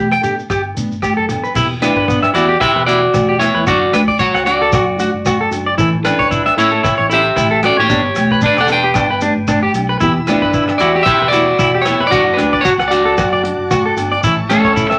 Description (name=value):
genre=highlife guitar band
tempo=114 BPM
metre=4/4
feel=swing 55% on 16ths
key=D major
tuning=A4 = 440 Hz
part: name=electric guitar at the edge of break-up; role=arpeggios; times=0.0-15.0 s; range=B3 to G5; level=-19 LUFS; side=equal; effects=none
part: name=fingered electric bass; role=bass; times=0.0-14.9 s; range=E1 to A2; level=-27 LUFS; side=equal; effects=none
part: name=damped 70s drum kit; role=drums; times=0.1-15.0 s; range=crash cymbal, hi-hat, kick drum, rim click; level=-26 LUFS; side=equal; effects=none
part: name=agogo bells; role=percussion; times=0.1-15.0 s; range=none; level=-28 LUFS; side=equal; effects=none
part: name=nylon-string guitar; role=accompaniment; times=0.2-14.7 s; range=E3 to A4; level=-25 LUFS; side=equal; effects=none
part: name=shekere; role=percussion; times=0.2-14.9 s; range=none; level=-27 LUFS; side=equal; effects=none
part: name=congas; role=percussion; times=0.5-14.6 s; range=none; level=-24 LUFS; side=equal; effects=none
part: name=electric guitar at the edge of break-up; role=melody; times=1.8-15.0 s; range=C#4 to G5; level=-16 LUFS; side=equal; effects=warbly pitch drift
part: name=combo organ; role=sustained chords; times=10.0-15.0 s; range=E5 to E6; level=-30 LUFS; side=equal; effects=none
room=moderate studio ambience, RT60 0.5 s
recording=vinyl crackle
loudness=-14 LUFS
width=mono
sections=0.0-1.6 A section; 1.6-15.0 B section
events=none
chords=0.0 Gadd9; 1.6 Em; 3.7 D/F#; 5.8 A; 7.9 G; 10.0 Em; 12.1 D/F#; 14.2 A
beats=0.50 1.03 | 1.55 2.08 2.61 3.14 | 3.67 4.20 4.72 5.25 | 5.78 6.31 6.84 7.37 | 7.90 8.43 8.96 9.48 | 10.01 10.54 11.07 11.60 | 12.12 12.65 13.18 13.71 | 14.24 14.76